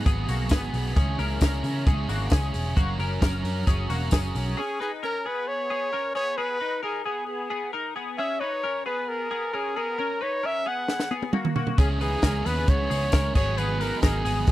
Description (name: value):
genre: jangly indie pop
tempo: 133 BPM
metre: 4/4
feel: straight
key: C# dorian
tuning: A4 = 440 Hz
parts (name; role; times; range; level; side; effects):
- biting overdriven guitar; accompaniment; 0.0-4.6, 11.8-14.5 s; G#2 to A#4; -31 LUFS; right 5 dB; none
- clean electric guitar; arpeggios; 0.0-14.5 s; A#3 to B4; -32 LUFS; left 4 dB; analog chorus, slapback echo
- vintage muted picked electric bass; bass; 0.1-4.5, 11.8-14.5 s; E1 to C#3; -27 LUFS; equal; none
- compact cocktail drum kit; drums; 0.1-4.5, 10.9-14.5 s; crash cymbal, hi-hat, kick drum, snare drum, toms; -22 LUFS; equal; none
- tambourine; percussion; 0.1-4.5, 11.8-14.5 s; none; -44 LUFS; left 11 dB; none
- clear trumpet; melody; 4.6-14.5 s; G#4 to F#5; -28 LUFS; equal; slapback echo
room: little or no reverb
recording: dry, close 1970s-style studio recording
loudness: -23 LUFS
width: side -15 dB against mid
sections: 0.0-4.6 A section; 4.6-14.5 B section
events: drum fill 10.9-11.8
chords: 0.0 G#m7; 1.0 C#m; 2.8 F#; 4.6 C#5; 6.2 G#m; 8.2 C#5; 10.0 F#; 11.8 C#m; 13.4 G#m7